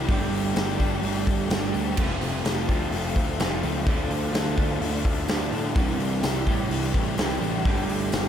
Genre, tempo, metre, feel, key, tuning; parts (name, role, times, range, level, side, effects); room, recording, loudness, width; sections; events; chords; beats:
rock, shoegaze and dream pop; 127 BPM; 4/4; straight; A4 = 441 Hz
electric guitar at the edge of break-up; riff; 0.0-8.3 s; C3 to G4; -29 LUFS; right 8 dB; reverse reverb
overdriven semi-hollow guitar; riff; 0.0-8.3 s; F2 to G4; -29 LUFS; left 7 dB; lush chorus
fuzz picked electric bass; bass; 0.0-8.3 s; F1 to A2; -30 LUFS; equal; overdrive
huge arena drum kit; drums; 0.1-8.2 s; crash cymbal, hi-hat, kick drum, snare drum; -26 LUFS; equal
tambourine; percussion; 0.6-8.2 s; -45 LUFS; right 6 dB
moderate huge ambient reverb, RT60 8.0 s; dreamy mix soaked in reverb; -22 LUFS; side -9 dB against mid
0.0-8.3 A section
0.1 Gsus2; 2.0 F; 3.9 Dm; 5.8 Cadd9; 7.7 Gsus2
| 0.09 0.56 1.03 1.50 | 1.98 2.45 2.92 3.40 | 3.87 4.34 4.82 5.29 | 5.76 6.23 6.71 7.18 | 7.65 8.12